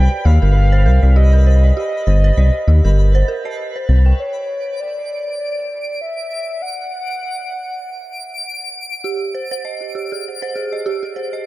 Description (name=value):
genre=IDM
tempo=99 BPM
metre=4/4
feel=swing 56% on 16ths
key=unclear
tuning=A4 = 440 Hz
part: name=warbly nostalgic lead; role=melody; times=0.0-8.7 s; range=C#5 to G5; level=-25 LUFS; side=equal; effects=chorus, tremolo, analog delay
part: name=dark detuned synth bell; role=arpeggios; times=0.0-4.2, 9.0-11.5 s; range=G4 to G5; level=-24 LUFS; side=right 3 dB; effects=chorus, phaser, dub echo
part: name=rubbery square bass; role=bass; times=0.0-4.1 s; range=G1 to Eb2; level=-10 LUFS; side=equal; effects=none
part: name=twinkling granular texture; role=texture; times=0.0-11.5 s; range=B4 to D7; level=-30 LUFS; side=left 3 dB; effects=built-in reverb
room=little or no reverb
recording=echo-heavy mix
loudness=-15 LUFS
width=side -18 dB against mid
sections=0.0-4.2 A section; 4.2-11.5 B section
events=none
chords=0.0 Cm7; 4.2 N.C.; 9.0 G#maj7#11/G